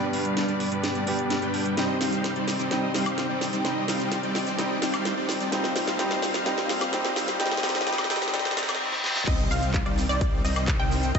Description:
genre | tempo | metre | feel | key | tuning
EDM, festival progressive house | 128 BPM | 4/4 | straight | C minor | A4 = 440 Hz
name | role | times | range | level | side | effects
warm baby grand piano | accompaniment | 0.0-9.3 s | G2 to B4 | -29 LUFS | equal | sidechain pumping, ping-pong delay
warm studio string section | sustained chords | 0.0-11.2 s | G2 to G5 | -35 LUFS | left 2 dB | sidechain pumping
dense compressed supersaw | riff | 0.0-11.2 s | G3 to G5 | -28 LUFS | equal | sidechain pumping, low-pass filter, ping-pong delay
riser, reverse cymbal and impact | sound effects | 4.3-11.1 s | none | -37 LUFS | left 1 dB | none
house drum kit | drums | 0.1-11.2 s | crash cymbal, handclaps, hi-hat, shaker, snare drum, woodblock | -30 LUFS | equal | none
wide unison pluck | arpeggios | 9.3-11.2 s | D5 to G5 | -31 LUFS | equal | cassette tape, sidechain pumping, ping-pong delay
detuned saw bass | bass | 9.3-11.2 s | C2 | -28 LUFS | equal | sidechain pumping
electronic kick drum | drums | 9.3-11.2 s | none | -26 LUFS | equal | none
room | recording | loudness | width
wet concert hall reverb, RT60 1.9 s, digital ambience | high-pass filter, nothing above 7.9 kHz | -23 LUFS | side -6 dB against mid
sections
0.0-9.3 A section; 9.3-11.2 B section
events
build-up 0.0-9.3; drum fill 0.0-8.8, 8.9-9.3; filter sweep on supersaw synth 0.0-9.3; filter sweep 0.0-9.3; reverse cymbal 8.3-9.3; drop 9.3-11.2; impact 9.3-11.1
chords
0.0 G; 1.8 Cm; 5.5 Bbsus2; 9.3 Cm

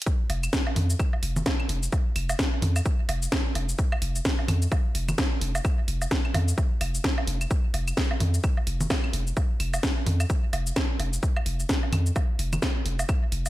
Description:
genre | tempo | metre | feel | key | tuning
minimal techno | 129 BPM | 4/4 | swing 59% on 16ths | unclear | A4 = 440 Hz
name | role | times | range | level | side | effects
house drum kit | drums | 0.0-13.5 s | hi-hat, shaker, snare drum | -30 LUFS | equal | overdrive, gated reverb
electronic kick drum | drums | 0.1-13.2 s | none | -26 LUFS | equal | overdrive
punchy sub bass | bass | 0.3-13.5 s | F1 to F2 | -26 LUFS | equal | sidechain pumping
woodblock, claves and congas | percussion | 0.3-13.5 s | none | -34 LUFS | right 2 dB | overdrive, digital delay
room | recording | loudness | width
little or no reverb | bright 1980s-style digital production | -23 LUFS | side -16 dB against mid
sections
0.1-13.5 A section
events
drop 0.1-13.5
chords
none

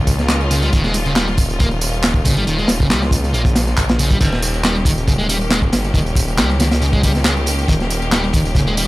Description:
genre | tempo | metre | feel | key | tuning
breakbeat, breaks | 138 BPM | 4/4 | straight | unclear | A4 = 442 Hz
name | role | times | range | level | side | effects
bright studio string section | sustained chords | 0.0-8.9 s | Eb3 to G4 | -25 LUFS | left 1 dB | sidechain pumping
detuned saw bass | bass | 0.0-8.9 s | Eb1 to Db2 | -20 LUFS | equal | none
crunchy breakbeat drum kit | drums | 0.1-8.9 s | crash cymbal, hi-hat, kick drum, snare drum | -17 LUFS | equal | none
house drum kit | drums | 0.1-8.9 s | handclaps, hi-hat, tambourine | -24 LUFS | right 1 dB | none
sludgy distorted guitar | riff | 0.5-8.8 s | Db3 to Bb3 | -21 LUFS | equal | overdrive, tape echo
room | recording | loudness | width
small room ambience | dry, gritty hardware recording | -14 LUFS | side -18 dB against mid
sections
0.0-4.2 A section; 4.2-8.9 A section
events
drop 0.0-4.2, 4.2-8.9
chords
0.0 Eb7

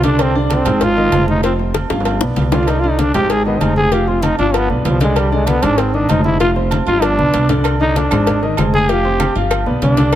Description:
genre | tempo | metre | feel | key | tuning
latin, salsa | 193 BPM | 4/4 | straight | C harmonic minor | A4 = 439 Hz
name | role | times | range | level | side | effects
growling trombone | melody | 0.0-10.2 s | D3 to Ab4 | -17 LUFS | right 1 dB | none
warm concert grand piano | accompaniment | 0.0-10.2 s | D3 to F5 | -20 LUFS | left 3 dB | none
upright bass | bass | 0.0-10.2 s | F1 to C2 | -18 LUFS | right 1 dB | none
agogo bells and timbales | percussion | 0.0-10.2 s | none | -25 LUFS | right 7 dB | none
congas | percussion | 0.0-10.2 s | none | -22 LUFS | left 1 dB | none
cowbell and bongos | percussion | 0.0-10.2 s | none | -24 LUFS | left 6 dB | none
claves | percussion | 7.6-10.2 s | none | -32 LUFS | right 5 dB | none
room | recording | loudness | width
light reverb | none | -13 LUFS | side -12 dB against mid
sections
0.0-10.2 A section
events
trombone solo 0.0-10.2; drum fill 1.7-2.7, 7.2-7.6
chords
0.2 Csus2; 0.8 Ab; 1.4 Fsus2; 2.1 G7; 2.7 Csus2; 3.3 Ab; 3.9 Fsus2; 4.5 G7; 5.2 Csus2; 5.8 Ab; 6.4 Fsus2; 7.0 G7; 7.6 Csus2; 8.3 Ab; 8.9 Fsus2; 9.5 G7

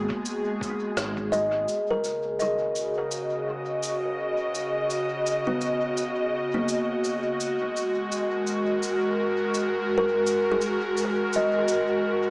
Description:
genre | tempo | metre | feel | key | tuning
ambient dub | 84 BPM | 4/4 | swing 57% on 16ths | unclear | A4 = 441 Hz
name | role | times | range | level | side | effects
airy breathy pad | sustained chords | 0.0-12.3 s | C#3 to D#5 | -25 LUFS | equal | chorus
kalimba | arpeggios | 0.0-12.3 s | A#3 to D#6 | -28 LUFS | equal | low-pass filter, analog delay
fingered electric bass | bass | 0.0-1.7 s | G#1 | -34 LUFS | equal | none
electronic kick drum | drums | 0.1-1.3 s | none | -38 LUFS | equal | none
cabasa and rim click | drums | 0.3-11.8 s | none | -34 LUFS | equal | dub echo
room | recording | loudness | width
wet spring reverb, RT60 1.6 s, studio reverb | echo-heavy mix, small speaker sound | -24 LUFS | side -28 dB against mid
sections
0.0-1.7 A section; 1.7-12.3 B section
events
band accent 1.0-1.3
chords
0.0 G#7sus2; 1.7 C#9sus4; 7.4 G#7sus2

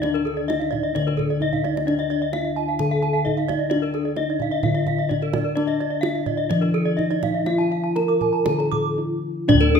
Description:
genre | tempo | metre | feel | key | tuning
Balinese gamelan | 116-130 BPM | 4/4 | straight | D pelog | A4 = 441 Hz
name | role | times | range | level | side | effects
gamelan-type bronze metallophone | melody | 0.0-9.8 s | D4 to Bb4-40c | -25 LUFS | right 1 dB | none
gamelan-type bronze metallophone | arpeggios | 0.0-9.8 s | A4-45c to Bb5-40c | -27 LUFS | left 6 dB | none
gamelan-type bossed gongs | bass | 0.0-9.8 s | D2 to E4+50c | -24 LUFS | left 2 dB | none
kendang | percussion | 0.0-9.8 s | none | -28 LUFS | right 4 dB | none
gamelan-type bronze metallophone | arpeggios | 0.3-9.7 s | A4-45c to D6 | -28 LUFS | right 8 dB | none
room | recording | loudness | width
light reverb | minimal, uncompressed stereo recording | -20 LUFS | side -6 dB against mid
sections
0.0-9.5 A section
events
drum fill 1.4-1.9; break 8.7-9.5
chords
none

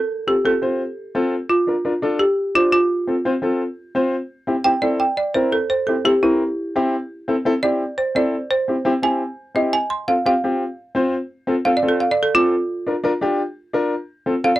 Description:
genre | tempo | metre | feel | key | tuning
latin | 171 BPM | 4/4 | straight | unclear | A4 = 443 Hz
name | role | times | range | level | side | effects
folk marimba with hard mallets | melody | 0.0-14.6 s | E4 to C6 | -18 LUFS | right 1 dB | none
clear upright piano | accompaniment | 0.3-14.5 s | C4 to C5 | -20 LUFS | left 1 dB | none
room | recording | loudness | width
light reverb | dry, close 1970s-style studio recording | -18 LUFS | side -16 dB against mid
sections
0.0-4.3 A section; 4.3-14.6 B section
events
marimba solo 4.3-14.6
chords
0.0 F; 1.5 Bb (rootless); 2.9 F; 4.3 C; 9.9 F; 12.7 Bb; 14.1 F

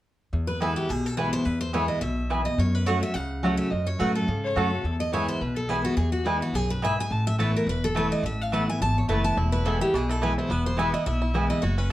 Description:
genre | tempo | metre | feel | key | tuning
bluegrass | 212 BPM | 4/4 | swing 54% on 8ths | E major | A4 = 436 Hz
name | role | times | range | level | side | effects
picked steel-string acoustic guitar | accompaniment | 0.3-11.9 s | E2 to F#4 | -28 LUFS | left 1 dB | none
upright bass | bass | 0.3-11.9 s | E1 to A2 | -28 LUFS | equal | none
picked steel-string acoustic guitar | melody | 0.5-11.9 s | D#4 to A5 | -30 LUFS | equal | none
mandolin | stabs | 0.6-11.5 s | A3 to A5 | -29 LUFS | right 2 dB | none
clear fiddle | second line | 4.4-4.9 s | A4 to C#5 | -31 LUFS | left 4 dB | none
bluegrass banjo | melody | 9.4-11.9 s | E3 to F#4 | -33 LUFS | right 2 dB | none
room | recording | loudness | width
moderate studio reverb, RT60 0.7 s | worn, warbling old tape, cassette tape, warbly pitch drift | -23 LUFS | side -14 dB against mid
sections
0.3-11.9 A section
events
none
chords
0.3 E; 2.6 F#m; 4.8 E; 7.1 Asus2; 9.4 E

